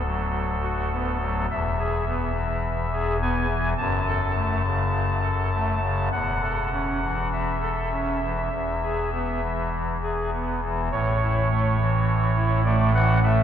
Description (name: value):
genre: classical, chorale-style piece for pipe organ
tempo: 49-54 BPM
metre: 4/4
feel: rubato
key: A major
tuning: A4 = 442 Hz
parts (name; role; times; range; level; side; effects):
- pipe organ, soft reed; solo; 0.0-13.4 s; D1 to A5; -22 LUFS; equal; none
room: wet cathedral reverb, RT60 4.1 s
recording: none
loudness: -22 LUFS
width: side -9 dB against mid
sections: 0.0-10.9 A section; 10.9-13.4 B section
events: none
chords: 0.0 Bm/D; 1.5 E; 3.8 F#m; 6.1 A/E; 8.5 E; 10.9 A